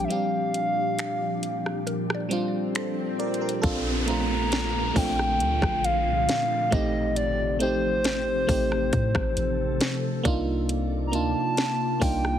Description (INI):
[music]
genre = contemporary R&B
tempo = 68 BPM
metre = 4/4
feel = straight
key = unclear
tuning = A4 = 440 Hz
[part]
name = hollow clarinet-like synth lead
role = melody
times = 0.0-12.4 s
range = C5 to Bb5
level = -27 LUFS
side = equal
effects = chorus, ping-pong delay
[part]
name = FM electric piano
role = accompaniment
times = 0.0-12.4 s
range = G3 to D5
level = -29 LUFS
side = right 2 dB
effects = chorus
[part]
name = glassy FM pad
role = sustained chords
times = 0.0-12.4 s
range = Bb2 to D5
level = -32 LUFS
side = left 2 dB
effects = ensemble chorus, built-in reverb
[part]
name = soft 808-style bass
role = bass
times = 0.0-12.4 s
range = A1 to A2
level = -29 LUFS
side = equal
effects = none
[part]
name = trap drum kit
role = drums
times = 0.0-12.4 s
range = finger snaps, hi-hat, kick drum, rim click, snare drum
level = -28 LUFS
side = equal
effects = none
[part]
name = mallet-like synth pluck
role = texture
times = 0.0-4.3 s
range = Bb4 to G5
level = -39 LUFS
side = left 3 dB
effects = chorus, phaser, ping-pong delay
[part]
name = swell and downlifter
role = sound effects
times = 2.4-10.7 s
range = none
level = -35 LUFS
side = left 2 dB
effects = none
[sound]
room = little or no reverb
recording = heavily compressed radio sound, multiband compression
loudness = -23 LUFS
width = side -10 dB against mid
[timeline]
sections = 0.0-3.6 A section; 3.6-12.4 B section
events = kick muted 0.1-3.6; swell 2.4-3.6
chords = 0.0 Bb6; 6.7 Am7b5; 10.3 Cm11